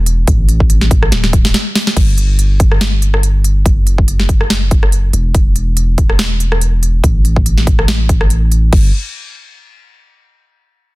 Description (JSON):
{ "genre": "future bass", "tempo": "142 BPM", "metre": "4/4", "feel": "swing 55% on 16ths, half-time", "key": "unclear", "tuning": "A4 = 440 Hz", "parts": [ { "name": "long sustained 808-style bass", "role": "bass", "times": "0.0-8.9 s", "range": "D1 to A1", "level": "-13 LUFS", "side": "equal", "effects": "sidechain pumping" }, { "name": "trap drum kit", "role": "drums", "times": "0.1-8.8 s", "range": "crash cymbal, hi-hat, rim click, snare drum", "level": "-18 LUFS", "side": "equal", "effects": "overdrive" }, { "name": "electronic kick drum", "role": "drums", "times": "0.3-8.8 s", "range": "none", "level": "-12 LUFS", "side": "equal", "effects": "none" } ], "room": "little or no reverb", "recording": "dense, heavily limited modern master", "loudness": "-10 LUFS", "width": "side -20 dB against mid", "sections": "0.0-2.0 A section; 2.0-8.7 B section; 8.7-10.4 C section", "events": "drop 0.0-2.0; drum fill 1.1-2.0; break 1.5-2.0; filter sweep on 808-style bass 2.0-8.7", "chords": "none", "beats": "| 0.28 0.70 1.12 1.54 | 1.97 2.39 2.81 3.23 | 3.66 4.08 4.50 4.92 | 5.35 5.77 6.19 6.61 | 7.04 7.46 7.88 8.30 | 8.73" }